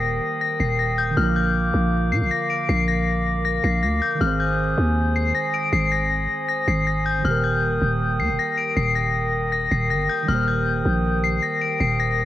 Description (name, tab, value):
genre	hip hop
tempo	158 BPM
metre	4/4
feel	half-time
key	Eb major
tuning	A4 = 438 Hz
part	dark detuned synth bell	melody	0.0-12.2 s	F6 to D7	-23 LUFS	left 5 dB	chorus, low-pass filter
part	muted felt-like synth keys	accompaniment	0.0-12.2 s	D3 to C5	-30 LUFS	right 5 dB	chorus, low-pass filter, cassette tape
part	glass harmonica	sustained chords	0.0-12.2 s	Bb4 to Eb6	-27 LUFS	equal	cassette tape
part	growling 808-style bass	bass	0.0-12.2 s	Eb1 to Bb2	-22 LUFS	equal	none
room	digital ambience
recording	home recording on cassette, vinyl crackle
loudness	-19 LUFS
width	side -13 dB against mid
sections	0.0-7.2 A section; 7.2-12.2 A section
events	none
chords	0.0 Eb; 1.2 Bb; 4.2 Ab; 7.2 Eb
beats	0.03 0.41 0.79 | 1.17 1.55 1.93 2.31 | 2.69 3.07 3.45 3.83 | 4.21 4.59 4.97 5.35 | 5.73 6.11 6.49 6.87 | 7.25 7.63 8.01 8.38 | 8.77 9.14 9.53 9.90 | 10.28 10.66 11.04 11.42 | 11.80 12.18